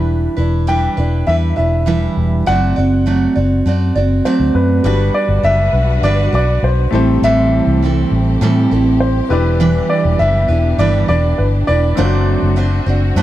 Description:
acoustic pop; 101 BPM; 4/4; straight; G major; A4 = 441 Hz
picked steel-string acoustic guitar; accompaniment; 0.0-13.2 s; A2 to D5; -17 LUFS; right 3 dB
vintage muted fingered electric bass; bass; 0.0-13.2 s; E1 to A2; -15 LUFS; left 1 dB
warm upright piano; melody; 0.7-12.5 s; B4 to G5; -19 LUFS; equal; dub echo
clear upright piano; accompaniment; 4.8-13.2 s; G3 to D5; -25 LUFS; left 6 dB
warm studio string section; sustained chords; 4.9-13.2 s; E3 to B4; -26 LUFS; left 1 dB
moderate spring reverb, RT60 1.1 s, studio reverb; echo-heavy mix; -12 LUFS; side -14 dB against mid
0.0-4.8 A section; 4.8-13.2 B section
0.0 Em7; 2.5 D7/F#; 4.8 Gmaj7; 6.9 Am7; 9.3 Em7; 12.0 D7/F#
| 0.08 0.68 1.27 1.87 | 2.47 3.06 3.66 4.25 | 4.85 5.44 6.04 6.63 | 7.23 7.82 8.42 9.01 | 9.60 10.20 10.79 11.38 | 11.98 12.57 13.16

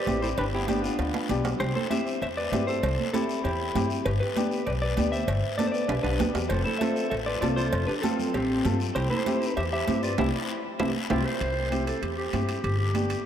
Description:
latin, cumbia; 196 BPM; 4/4; straight; C major; A4 = 442 Hz
clean electric guitar; melody; 0.0-11.2 s; C4 to E5; -30 LUFS; equal; spring reverb, diffuse ambient delay
growling clarinet; second line; 0.0-1.3, 5.9-13.3 s; B3 to C5; -34 LUFS; right 2 dB
dark upright piano; accompaniment; 0.1-13.2 s; B3 to A4; -32 LUFS; left 5 dB
upright bass; bass; 0.1-13.1 s; F1 to G2; -30 LUFS; left 1 dB
congas; percussion; 0.1-13.1 s; -32 LUFS; right 6 dB
cowbell and timbales; percussion; 0.1-13.3 s; -37 LUFS; right 6 dB
guiro; percussion; 0.1-13.3 s; -39 LUFS; left 7 dB
wet cathedral reverb, RT60 5.8 s; dreamy mix soaked in reverb; -24 LUFS; side -9 dB against mid
0.0-1.6 A section; 1.6-11.4 B section; 11.4-13.3 C section
drum fill 1.0-1.6, 5.9-6.5, 10.6-11.4; band accent 10.2-11.4; clarinet solo 11.4-13.3
0.4 G7; 1.6 C; 4.1 G; 6.5 F; 9.0 C; 12.6 G
0.07 | 0.38 0.68 0.99 1.30 | 1.60 1.91 2.22 2.52 | 2.83 3.14 3.44 3.75 | 4.05 4.36 4.67 4.97 | 5.28 5.59 5.89 6.20 | 6.51 6.81 7.12 7.43 | 7.73 8.04 8.35 8.65 | 8.96 9.26 9.57 9.88 | 10.18 10.49 10.79 11.10 | 11.41 11.72 12.02 12.33 | 12.64 12.94 13.25

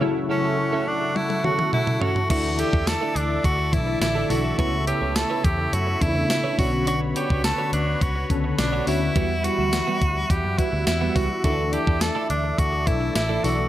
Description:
1980s-style pop; 105 BPM; 4/4; straight; D major; A4 = 441 Hz
warm analog keys; accompaniment; 0.0-13.7 s; C#3 to A4; -27 LUFS; left 2 dB; chorus, phaser
sweeping resonant pad; sustained chords; 0.0-13.7 s; G3 to D6; -32 LUFS; equal; chorus
twelve-string electric guitar; riff; 0.0-13.6 s; G3 to C#5; -30 LUFS; right 6 dB; analog chorus, tape echo
edgy tenor saxophone; melody; 0.3-13.7 s; C#4 to A4; -26 LUFS; equal
clean 12-bit digital drum machine; drums; 1.2-13.6 s; crash cymbal, hi-hat, kick drum, snare drum, tambourine, toms; -25 LUFS; equal; gated reverb
vintage muted picked electric bass; bass; 2.3-13.7 s; A1 to F#2; -26 LUFS; equal
light reverb; -20 LUFS; side -13 dB against mid
0.0-2.3 A section; 2.3-13.7 B section
break 0.0-2.3; drum fill 1.2-2.3
0.0 F#m7; 2.3 Dsus2; 4.6 Aadd9/C#; 6.6 Bmadd9; 9.2 Emadd9; 11.4 Dsus2
| 0.01 0.59 1.16 1.73 | 2.30 2.87 3.44 4.01 | 4.59 5.16 5.73 6.30 | 6.87 7.44 8.02 8.59 | 9.16 9.73 10.30 10.87 | 11.44 12.02 12.59 13.16

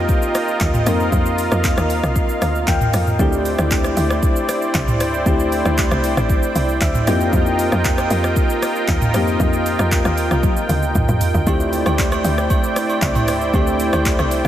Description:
amapiano; 116 BPM; 4/4; straight; D phrygian; A4 = 440 Hz
soft electric-piano-like synth keys; accompaniment; 0.0-14.5 s; A3 to G5; -22 LUFS; left 2 dB; chorus
warm analog pad; sustained chords; 0.0-14.5 s; E4 to G5; -21 LUFS; right 1 dB; chorus, sidechain pumping
tight log drum bass; bass; 0.0-14.5 s; A1 to F2; -21 LUFS; equal
afro-pop drum kit; drums; 0.1-14.5 s; handclaps, hi-hat, kick drum, rim click, shaker, toms; -20 LUFS; equal
agogo bells and woodblock; percussion; 11.5-14.3 s; -29 LUFS; right 5 dB
moderate huge ambient reverb, RT60 4.4 s; dreamy mix soaked in reverb; -15 LUFS; side -12 dB against mid
0.0-14.5 A section
synth keys fill 2.2-3.2, 6.6-7.3; drum fill 10.4-11.5
0.0 F9sus4; 3.2 D9sus4; 7.1 F9sus4; 11.5 D9sus4
0.09 0.61 | 1.12 1.64 2.16 2.68 | 3.19 3.71 4.23 4.75 | 5.26 5.78 6.30 6.81 | 7.33 7.85 8.37 8.88 | 9.40 9.92 10.43 10.95 | 11.47 11.99 12.50 13.02 | 13.54 14.05

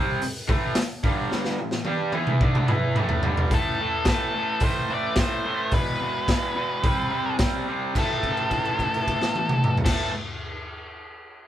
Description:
garage rock duo or trio; 108 BPM; 4/4; straight; A minor; A4 = 442 Hz
raw garage guitar; riff; 0.0-10.1 s; E2 to G4; -26 LUFS; right 1 dB; overdrive
raw garage drum kit; drums; 0.2-10.0 s; crash cymbal, hi-hat, kick drum, snare drum, toms; -24 LUFS; equal
octave-fuzz lead guitar; melody; 3.5-10.1 s; A4 to D5; -27 LUFS; left 1 dB; distortion
moderate studio reverb, RT60 0.5 s; band playing live in one room; -22 LUFS; side -11 dB against mid
0.0-3.5 A section; 3.5-7.9 B section; 7.9-10.2 C section
drum fill 1.3-3.5; held note 7.9-9.8
0.0 Am; 1.0 G5; 1.6 A5; 3.5 Am; 5.7 E5; 6.8 C5; 7.9 A5
0.21 0.76 | 1.31 1.85 2.40 2.95 | 3.50 4.06 4.61 5.16 | 5.72 6.27 6.83 7.39 | 7.95 8.50 9.06 9.62

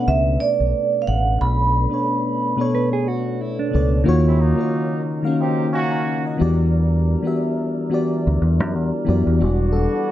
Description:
R&B; 90 BPM; 4/4; swing 56% on 16ths; A4 = 437 Hz
vibraphone with medium hard mallets; melody; 0.0-2.7 s; D5 to B5; -21 LUFS; right 4 dB
mellow FM electric piano; accompaniment; 0.0-10.1 s; B2 to A#5; -21 LUFS; left 2 dB; chorus
tonewheel organ; sustained chords; 0.0-10.1 s; C#3 to D5; -29 LUFS; right 1 dB; overdrive, slow rotary speaker
deep dub fingered electric bass; bass; 0.1-9.9 s; E1 to F#2; -18 LUFS; equal
mellow electric guitar; second line; 2.7-4.0 s; D4 to B4; -25 LUFS; right 7 dB
warm horn section; stabs; 4.3-10.1 s; F#3 to G4; -27 LUFS; right 4 dB; tape echo
light reverb; dark, warm production; -17 LUFS; side -13 dB against mid
0.0-9.4 A section
0.0 Bm9; 4.1 D#m9; 6.4 Em9
0.06 0.73 | 1.40 2.06 2.73 3.40 | 4.06 4.73 5.40 6.06 | 6.73 7.40 8.06 8.73 | 9.40 10.06

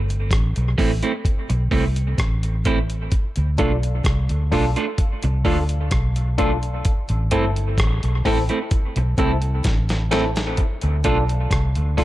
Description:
dub reggae; 64 BPM; 4/4; straight; A minor; A4 = 439 Hz
vintage muted fingered electric bass; bass; 0.0-12.0 s; G1 to D2; -21 LUFS; equal
dusty soul sampler-style drum kit; drums; 0.1-12.0 s; hi-hat, kick drum, rim click, snare drum; -22 LUFS; equal
electric guitar at the edge of break-up; accompaniment; 0.8-12.0 s; A3 to F4; -26 LUFS; right 5 dB; dub echo
percussive organ stab; stabs; 3.6-12.0 s; C4 to A4; -27 LUFS; left 4 dB; chorus, dub echo
light reverb, digital ambience; lossy compression artefacts; -18 LUFS; side -15 dB against mid
0.0-12.0 A section
break 0.0-3.1; drum fill 9.7-10.6
0.0 Am; 3.1 Dm; 6.9 Am; 10.6 Dm
0.32 1.25 2.18 | 3.12 4.05 4.99 5.92 | 6.85 7.79 8.72 9.65 | 10.58 11.52

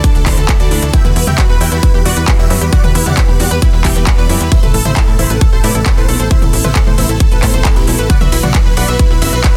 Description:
uplifting trance; 134 BPM; 4/4; straight; E minor; A4 = 439 Hz
big supersaw lead; melody; 0.0-9.5 s; F#4 to G5; -23 LUFS; equal; sidechain pumping, digital delay
warm studio string section; sustained chords; 0.0-9.6 s; C3 to G4; -26 LUFS; equal; sidechain pumping
analog pluck; arpeggios; 0.0-9.5 s; D4 to E5; -25 LUFS; equal; chorus, sidechain pumping, digital delay
tight sequencer bass; bass; 0.0-9.4 s; D1 to A2; -18 LUFS; equal; sidechain pumping
big-room dance drum kit; drums; 0.0-9.5 s; handclaps, hi-hat, ride cymbal, toms; -20 LUFS; equal; sidechain pumping on hats, sidechain pumping on toms, sidechain pumping on cymbals
electronic kick drum; drums; 0.0-9.5 s; -13 LUFS; equal
little or no reverb; dense, heavily limited modern master; -11 LUFS; mono
0.0-9.6 A section
0.0 Dsus2; 0.9 Emadd9; 4.5 Amadd9; 8.1 Bsus4
0.04 0.49 | 0.94 1.38 1.83 2.28 | 2.73 3.17 3.62 4.07 | 4.52 4.96 5.41 5.86 | 6.31 6.76 7.20 7.65 | 8.10 8.55 8.99 9.44

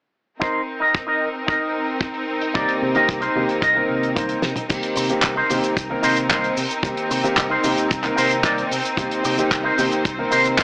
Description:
nu-disco, nu disco; 112 BPM; 4/4; straight; C minor; A4 = 440 Hz
clear symphonic string section; sustained chords; 0.4-10.6 s; C4 to C5; -28 LUFS; equal; sidechain pumping
electric guitar with an envelope filter; riff; 0.4-10.6 s; Eb4 to Eb5; -24 LUFS; equal; analog chorus, low-pass filter, dub echo
damped 70s drum kit; drums; 0.4-10.6 s; cabasa, crash cymbal, handclaps, hi-hat, snare drum, toms; -27 LUFS; equal; low-pass filter on hats, small room ambience, low-pass filter on toms, low-pass filter on cymbals, low-pass filter on snare, low-pass filter on perc, low-pass filter on room
kick drum; drums; 0.4-10.6 s; -26 LUFS; equal; small room ambience
warm grand piano; accompaniment; 2.5-10.6 s; Eb3 to C5; -26 LUFS; equal; sidechain pumping, dub echo
fingered electric bass with an envelope filter; bass; 2.6-10.6 s; C2 to C3; -33 LUFS; equal; sidechain pumping
moderate echo chamber reverb, RT60 2.5 s; AM radio sound; -21 LUFS; mono
0.4-4.7 A section; 4.7-10.6 B section
filter sweep on drum 0.4-4.7; filter sweep on clean electric guitar 0.4-4.7; drum fill 4.4
0.4 Cm7
| 0.41 0.94 1.48 2.02 | 2.55 3.09 3.62 4.16 | 4.70 5.23 5.77 6.30 | 6.84 7.37 7.91 8.45 | 8.98 9.52 10.05 10.59

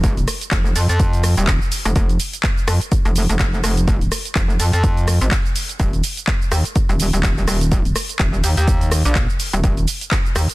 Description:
bass house; 125 BPM; 4/4; swing 57% on 16ths; A4 = 441 Hz
metallic wobble bass; bass; 0.0-10.5 s; Eb1 to F2; -17 LUFS; equal; chorus, tube saturation, sidechain pumping
electronic kick drum; drums; 0.0-10.2 s; -19 LUFS; equal
house drum kit; drums; 0.0-10.5 s; cabasa, handclaps, hi-hat, rim click; -23 LUFS; equal
little or no reverb; dense, heavily limited modern master; -15 LUFS; side -20 dB against mid
0.0-10.5 A section
| 0.04 0.52 1.00 1.48 | 1.96 2.44 2.92 3.40 | 3.88 4.36 4.84 5.32 | 5.80 6.28 6.76 7.24 | 7.72 8.20 8.68 9.16 | 9.64 10.12

